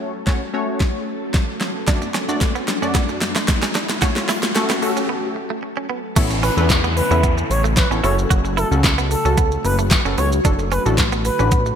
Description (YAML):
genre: dance-pop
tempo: 112 BPM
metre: 4/4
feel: straight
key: unclear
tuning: A4 = 440 Hz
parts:
  - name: funky polysynth comp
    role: accompaniment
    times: 0.0-11.8 s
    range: F#2 to E5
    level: -25 LUFS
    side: left 2 dB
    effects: chorus, sidechain pumping
  - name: ensemble organ-string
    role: sustained chords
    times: 0.0-11.8 s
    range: C#3 to A4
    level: -28 LUFS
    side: left 1 dB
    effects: phaser, ensemble chorus, sidechain pumping
  - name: riser and downlifter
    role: sound effects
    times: 0.0-10.4 s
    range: none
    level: -29 LUFS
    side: equal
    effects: none
  - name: pop drum kit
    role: drums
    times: 0.3-11.8 s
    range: crash cymbal, handclaps, hi-hat, kick drum, shaker, snare drum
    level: -19 LUFS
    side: equal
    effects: gated reverb
  - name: direct-recorded clean electric guitar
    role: riff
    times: 1.9-11.7 s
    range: A3 to F#4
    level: -27 LUFS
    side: right 8 dB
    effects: wide subtle chorus
  - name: fat analog bass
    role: bass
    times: 6.2-11.7 s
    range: F#1 to E2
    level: -20 LUFS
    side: equal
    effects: sidechain pumping
  - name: expressive portamento lead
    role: melody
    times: 6.4-11.6 s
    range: A4 to C#5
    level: -23 LUFS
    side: equal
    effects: chorus, sidechain pumping, digital delay
room: light reverb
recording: bright 1980s-style digital production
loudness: -16 LUFS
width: side -8 dB against mid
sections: 0.0-6.2 A section; 6.2-11.8 B section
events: build-up 0.0-6.2; drum fill 0.0-5.1; riser 0.0-6.2; break 5.1-6.2; drop 6.2-11.8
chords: 0.0 F#m; 1.9 D/F#; 4.0 F#m; 6.2 Aadd9; 8.0 F#m; 10.4 D/F#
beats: 0.27 0.81 1.34 | 1.88 2.41 2.95 3.48 | 4.02 4.56 5.09 5.63 | 6.16 6.70 7.23 7.77 | 8.31 8.84 9.38 9.91 | 10.45 10.98 11.52